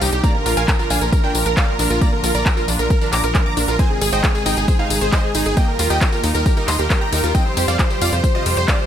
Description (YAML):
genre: uplifting trance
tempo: 135 BPM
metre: 4/4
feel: straight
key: unclear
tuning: A4 = 438 Hz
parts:
  - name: dense compressed supersaw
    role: melody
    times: 0.0-8.9 s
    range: F4 to D6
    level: -22 LUFS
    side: equal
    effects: sidechain pumping, dub echo
  - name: warm baby grand piano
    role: second line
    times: 0.0-8.9 s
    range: G4 to D6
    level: -28 LUFS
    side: right 2 dB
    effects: none
  - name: rich chamber string section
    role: sustained chords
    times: 0.0-8.9 s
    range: Bb2 to Ab4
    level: -27 LUFS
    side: left 1 dB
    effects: sidechain pumping
  - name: wide unison pluck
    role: arpeggios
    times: 0.0-8.8 s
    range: Bb3 to C5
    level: -25 LUFS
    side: right 3 dB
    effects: sidechain pumping, dub echo
  - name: tight sequencer bass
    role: bass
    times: 0.0-8.7 s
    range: Ab1 to F2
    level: -21 LUFS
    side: equal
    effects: tube saturation, sidechain pumping
  - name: big-room dance drum kit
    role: drums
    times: 0.0-8.8 s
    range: handclaps, hi-hat, ride cymbal, tambourine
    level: -24 LUFS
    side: left 2 dB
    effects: overdrive
  - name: electronic kick drum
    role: drums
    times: 0.2-8.8 s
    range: none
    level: -18 LUFS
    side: equal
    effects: overdrive
room: digital ambience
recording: none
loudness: -15 LUFS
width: side -10 dB against mid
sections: 0.0-8.9 A section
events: none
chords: 0.2 Bb; 3.8 Ab; 5.6 Ebadd9; 7.3 Fsus2